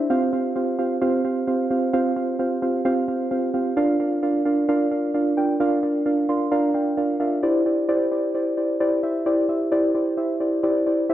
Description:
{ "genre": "pop", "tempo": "131 BPM", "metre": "4/4", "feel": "straight", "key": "C mixolydian", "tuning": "A4 = 440 Hz", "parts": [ { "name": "muted felt-like synth keys", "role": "solo", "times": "0.0-11.1 s", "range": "C4 to C6", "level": "-20 LUFS", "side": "right 1 dB", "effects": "chorus, slapback echo" } ], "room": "moderate lush hall reverb, RT60 2.3 s", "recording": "none", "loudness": "-20 LUFS", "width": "side -12 dB against mid", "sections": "0.0-7.4 A section; 7.4-11.1 B section", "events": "synth keys fill 6.1-7.4", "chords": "0.1 Fsus2; 3.8 Bb; 7.4 Cadd9", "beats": "| 0.10 0.56 1.02 1.48 | 1.93 2.39 2.85 3.31 | 3.77 4.22 4.68 5.14 | 5.60 6.06 6.51 6.97 | 7.43 7.89 8.35 8.80 | 9.26 9.72 10.18 10.64 | 11.09" }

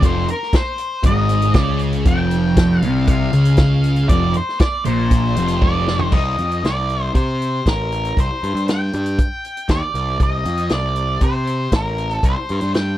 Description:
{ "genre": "psychedelic rock", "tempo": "118 BPM", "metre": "4/4", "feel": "straight", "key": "unclear", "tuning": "A4 = 439 Hz", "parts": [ { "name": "octave-fuzz lead guitar", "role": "melody", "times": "0.0-13.0 s", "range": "Bb4 to G5", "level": "-23 LUFS", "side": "equal", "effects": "distortion, tape echo" }, { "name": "fuzz guitar", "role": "riff", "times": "0.0-6.1 s", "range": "F2 to Db3", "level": "-17 LUFS", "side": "equal", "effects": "distortion, phaser" }, { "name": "fuzz picked electric bass", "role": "bass", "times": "0.0-13.0 s", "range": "F1 to C3", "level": "-21 LUFS", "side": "equal", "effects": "overdrive" }, { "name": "vintage drum kit", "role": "drums", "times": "0.0-12.9 s", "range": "crash cymbal, hi-hat, kick drum, snare drum, toms", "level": "-17 LUFS", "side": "equal", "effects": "none" } ], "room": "little or no reverb", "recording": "dry, close 1970s-style studio recording", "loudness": "-15 LUFS", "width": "side -13 dB against mid", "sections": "0.0-6.1 A section; 6.1-13.0 B section", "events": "drum fill 5.6-6.1", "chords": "0.0 F5; 6.1 C5", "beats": "| 0.02 0.53 1.04 1.55 | 2.06 2.56 3.07 3.58 | 4.09 4.60 5.11 5.62 | 6.13 6.64 7.15 7.66 | 8.17 8.68 9.18 9.69 | 10.20 10.71 11.22 11.72 | 12.23 12.74" }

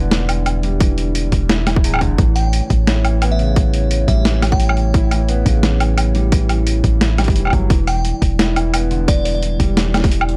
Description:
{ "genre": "half-time drum and bass", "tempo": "174 BPM", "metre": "4/4", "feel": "swing 56% on 16ths, half-time", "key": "E dorian", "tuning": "A4 = 439 Hz", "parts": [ { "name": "dark analog pad", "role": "sustained chords", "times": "0.0-10.4 s", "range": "G3 to D5", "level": "-29 LUFS", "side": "equal", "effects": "lush chorus, sidechain pumping" }, { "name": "felt-muted upright piano", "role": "arpeggios", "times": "0.0-10.4 s", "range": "E2 to E4", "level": "-27 LUFS", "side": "equal", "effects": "analog delay" }, { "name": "long sustained 808-style bass", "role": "bass", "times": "0.0-10.4 s", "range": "D1 to A1", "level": "-19 LUFS", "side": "equal", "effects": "tube saturation" }, { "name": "boom bap sampler-style drum kit", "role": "drums", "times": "0.1-10.4 s", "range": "hi-hat, snare drum, woodblock", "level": "-22 LUFS", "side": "equal", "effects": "none" }, { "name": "electronic kick drum", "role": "drums", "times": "0.8-10.1 s", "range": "none", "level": "-18 LUFS", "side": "equal", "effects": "overdrive" }, { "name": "glassy synth bell", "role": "melody", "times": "2.4-4.9, 7.9-9.4 s", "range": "D5 to G5", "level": "-29 LUFS", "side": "equal", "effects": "chorus, vintage 12-bit sampler grit, tape echo" } ], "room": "little or no reverb", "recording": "dry, gritty hardware recording, transformer saturation", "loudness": "-16 LUFS", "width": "mono", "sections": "0.0-10.4 A section", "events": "none", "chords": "0.0 Em7; 2.2 A; 7.7 Em7", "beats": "0.12 0.46 | 0.81 1.15 1.49 1.84 | 2.18 2.53 2.87 3.22 | 3.56 3.91 4.25 4.60 | 4.94 5.29 5.63 5.98 | 6.32 6.67 7.01 7.36 | 7.70 8.05 8.39 8.74 | 9.08 9.43 9.77 10.12" }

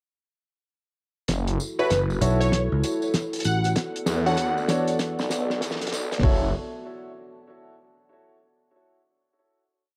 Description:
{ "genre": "glitch hop", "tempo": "97 BPM", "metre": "4/4", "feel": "swing 63% on 16ths", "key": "F# minor", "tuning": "A4 = 440 Hz", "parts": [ { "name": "dark analog pad", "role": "sustained chords", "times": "1.6-6.5 s", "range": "B3 to D5", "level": "-33 LUFS", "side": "equal", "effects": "chorus, sidechain pumping, cassette tape" }, { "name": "phased detuned saw bass", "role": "bass", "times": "1.3-6.5 s", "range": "F#1 to E2", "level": "-30 LUFS", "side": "equal", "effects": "phaser, tube saturation" }, { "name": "boom bap sampler-style drum kit", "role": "drums", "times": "1.3-6.4 s", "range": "hi-hat, kick drum, toms", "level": "-27 LUFS", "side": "equal", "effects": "high-pass filter on kick, high-pass filter on toms, high-pass filter on hats" }, { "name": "cloth-damped thuddy drum kit", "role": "drums", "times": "1.3-6.3 s", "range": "hi-hat, snare drum", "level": "-31 LUFS", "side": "equal", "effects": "none" }, { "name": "tambourine", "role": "percussion", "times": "1.3-6.2 s", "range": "none", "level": "-42 LUFS", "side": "equal", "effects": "none" }, { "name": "plucky unison lead", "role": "melody", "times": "1.8-4.7 s", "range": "B4 to F#5", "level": "-31 LUFS", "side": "equal", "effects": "phaser, cassette tape, analog delay" }, { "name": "bright grand piano", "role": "stabs", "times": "1.8-6.5 s", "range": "D4 to C#5", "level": "-32 LUFS", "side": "equal", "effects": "sidechain pumping, cassette tape, analog delay" }, { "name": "fingered electric bass", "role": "bass", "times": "2.2-5.9 s", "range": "A1 to E2", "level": "-27 LUFS", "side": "equal", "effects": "none" } ], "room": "moderate spring reverb, RT60 2.8 s", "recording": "home recording on cassette, high-pass filter", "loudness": "-24 LUFS", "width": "mono", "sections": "1.3-6.2 build; 6.2-8.7 final chord", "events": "build-up 1.3-6.2; drum fill 1.3-6.2; filter sweep 1.3-6.2", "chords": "1.3 F#m7; 3.8 Bm7; 6.2 F#m7", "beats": "| 1.29 1.90 2.52 3.14 | 3.76 4.38 5.00 5.62 | 6.23" }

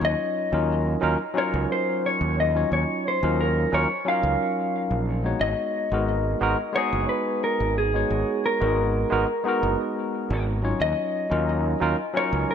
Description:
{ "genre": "sunset chillout", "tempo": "89 BPM", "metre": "4/4", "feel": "straight", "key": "G# minor", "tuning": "A4 = 440 Hz", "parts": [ { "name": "mellow electric guitar", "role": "melody", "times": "0.0-12.5 s", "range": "G#4 to E#5", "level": "-26 LUFS", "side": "left 1 dB", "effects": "tape echo" }, { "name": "barky tine electric piano", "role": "accompaniment", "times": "0.0-12.5 s", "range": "F#3 to C#5", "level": "-26 LUFS", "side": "equal", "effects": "auto-pan, ping-pong delay" }, { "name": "growling fingered electric bass", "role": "bass", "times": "0.0-12.4 s", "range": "F#1 to D#2", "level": "-26 LUFS", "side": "equal", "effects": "overdrive" } ], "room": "light reverb, digital ambience", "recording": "none", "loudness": "-22 LUFS", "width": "side -8 dB against mid", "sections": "0.0-12.5 A section", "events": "none", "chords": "0.0 D#m9; 5.4 G#m9; 10.8 D#m9", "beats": "| 0.02 0.69 1.37 2.04 | 2.72 3.39 4.07 4.74 | 5.41 6.09 6.76 7.44 | 8.11 8.78 9.46 10.13 | 10.81 11.48 12.15" }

